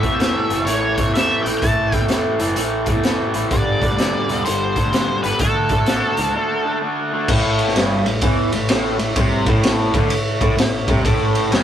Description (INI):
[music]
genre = blues rock power trio and southern rock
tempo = 127 BPM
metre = 4/4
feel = swing 64% on 8ths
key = A mixolydian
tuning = A4 = 440 Hz
[part]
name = octave-fuzz lead guitar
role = melody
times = 0.0-6.8 s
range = A4 to A5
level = -21 LUFS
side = equal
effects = wah, distortion
[part]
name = raw garage guitar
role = riff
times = 0.0-11.6 s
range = G2 to D4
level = -20 LUFS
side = equal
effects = overdrive
[part]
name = raw garage drum kit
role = drums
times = 0.0-11.6 s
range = crash cymbal, hi-hat, kick drum, ride cymbal, snare drum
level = -19 LUFS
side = equal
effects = none
[part]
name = growling picked electric bass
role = bass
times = 0.1-11.6 s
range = E1 to E2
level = -27 LUFS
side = equal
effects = overdrive
[part]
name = mellow tonewheel organ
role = sustained chords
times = 7.3-11.6 s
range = A3 to C#5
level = -25 LUFS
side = left 2 dB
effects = slow rotary speaker
[sound]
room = moderate small room ambience, RT60 0.5 s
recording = rough rehearsal-room recording, tube saturation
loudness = -16 LUFS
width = side -10 dB against mid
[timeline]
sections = 0.0-7.3 A section; 7.3-11.6 B section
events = break 6.3-7.3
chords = 0.0 A5; 3.5 G5; 5.4 D5; 7.3 A